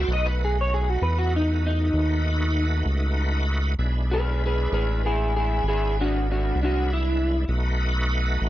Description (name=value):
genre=blues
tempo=65 BPM (dotted quarters)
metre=12/8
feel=straight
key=B mixolydian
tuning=A4 = 439 Hz
part: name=electric guitar through a small old amp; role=melody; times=0.0-7.5 s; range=D4 to D#5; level=-26 LUFS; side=equal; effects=analog chorus, slapback echo
part: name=bright tonewheel organ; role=sustained chords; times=0.0-8.5 s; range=G#3 to D5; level=-31 LUFS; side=equal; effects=slow rotary speaker, chorus vibrato
part: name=round analog bass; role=bass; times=0.0-8.5 s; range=G#1 to E2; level=-23 LUFS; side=equal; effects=none
room=little or no reverb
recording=dry, close 1970s-style studio recording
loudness=-21 LUFS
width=side -14 dB against mid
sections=0.1-8.5 A section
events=clean electric guitar solo 0.1-8.5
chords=0.1 B7; 3.8 E7; 7.5 B7